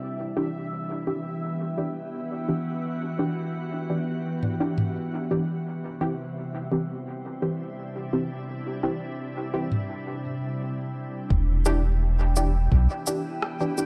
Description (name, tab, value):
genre	ambient dub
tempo	85 BPM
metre	4/4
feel	straight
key	E minor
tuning	A4 = 439 Hz
part	soft additive organ-like pad	sustained chords	0.0-13.9 s	C3 to G4	-34 LUFS	equal	ensemble chorus, built-in reverb
part	bubbling stepped-filter texture	texture	0.0-13.9 s	E5 to G5	-43 LUFS	equal	chorus, built-in reverb
part	filtered dub chord stab	stabs	0.4-13.9 s	E3 to G4	-32 LUFS	equal	chorus, dub echo
part	organic electronic drum kit	drums	4.4-4.9, 9.7-13.9 s	rim click, shaker, toms	-32 LUFS	equal	dub echo
part	warm sub bass	bass	11.3-12.9 s	E1 to B1	-23 LUFS	equal	none
part	electronic kick drum	drums	11.3-12.9 s	none	-26 LUFS	equal	none
room	light reverb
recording	lossy compression artefacts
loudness	-28 LUFS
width	mono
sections	0.0-11.3 A section; 11.3-13.9 B section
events	filter sweep on ambient pad 0.0-11.3; break 9.9-11.3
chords	0.0 Em7; 5.7 C; 11.3 Em7